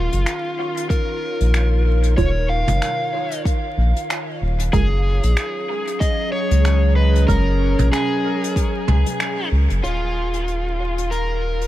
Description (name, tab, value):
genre	ambient dub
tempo	94 BPM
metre	4/4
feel	swing 57% on 16ths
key	Eb minor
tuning	A4 = 441 Hz
part	overdriven slide guitar	melody	0.0-11.7 s	F4 to F5	-24 LUFS	left 1 dB	dub echo
part	warbly tape-like pad	sustained chords	0.0-11.7 s	Eb3 to Bb5	-28 LUFS	right 1 dB	chorus, built-in reverb
part	round analog bass	bass	0.0-11.7 s	Eb1 to Db2	-17 LUFS	equal	tube saturation
part	jazz brush drum kit	drums	0.1-11.7 s	finger snaps, hi-hat, toms	-29 LUFS	equal	dub echo
part	electronic kick drum	drums	0.9-8.7 s	none	-20 LUFS	equal	none
part	filtered dub chord stab	stabs	2.2-10.0 s	Gb3 to Db5	-32 LUFS	right 4 dB	none
room	small room ambience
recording	vinyl crackle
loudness	-17 LUFS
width	side -14 dB against mid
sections	0.0-9.8 A section; 9.8-11.7 B section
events	band accent 9.2-9.5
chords	0.0 Eb7sus2; 4.7 Gbmaj9; 9.8 Ebm9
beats	0.26 0.90 1.54 | 2.18 2.82 3.45 4.09 | 4.73 5.37 6.01 6.65 | 7.28 7.92 8.56 9.20 | 9.84 10.48 11.11